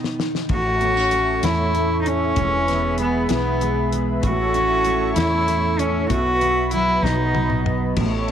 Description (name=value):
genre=six-eight pop ballad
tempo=64 BPM (dotted quarters)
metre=6/8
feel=straight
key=unclear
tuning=A4 = 441 Hz
part: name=fingerpicked steel-string acoustic guitar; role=accompaniment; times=0.0-8.3 s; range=A2 to E4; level=-24 LUFS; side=right 1 dB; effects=double-tracked left and right
part: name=damped 70s drum kit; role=drums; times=0.0-8.3 s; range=crash cymbal, hi-hat, kick drum, ride cymbal, snare drum, toms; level=-27 LUFS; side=left 4 dB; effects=none
part: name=rich cello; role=melody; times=0.5-7.7 s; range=B3 to F#4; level=-21 LUFS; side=equal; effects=none
part: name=warm analog pad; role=sustained chords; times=0.5-8.3 s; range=F#4 to C#6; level=-28 LUFS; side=equal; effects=chorus
part: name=woody fretless electric bass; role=bass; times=0.5-8.3 s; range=E1 to E2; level=-24 LUFS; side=equal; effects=none
room=light reverb, small room ambience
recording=1960s-style stereo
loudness=-18 LUFS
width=side -9 dB against mid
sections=0.5-8.0 A section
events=drum fill 0.0-0.5, 7.0-8.0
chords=0.0 B; 0.5 A; 2.4 E; 4.2 A; 6.1 Bsus4; 7.0 B